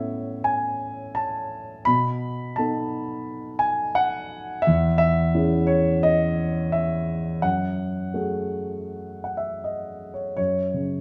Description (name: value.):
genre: classical, lyrical solo piano.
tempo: 85 BPM.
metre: 4/4.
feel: rubato.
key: F# dorian.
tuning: A4 = 440 Hz.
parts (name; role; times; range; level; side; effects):
dark concert grand piano; solo; 0.0-11.0 s; E2 to B5; -24 LUFS; equal; none.
room: moderate recital hall reverb, RT60 1.4 s.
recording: none.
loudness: -24 LUFS.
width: mono.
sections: 0.0-10.4 A section.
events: grand piano fill 8.9-10.4.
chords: 0.0 Aadd9; 1.9 B7; 4.7 E6; 7.4 F#madd9; 10.4 F#5.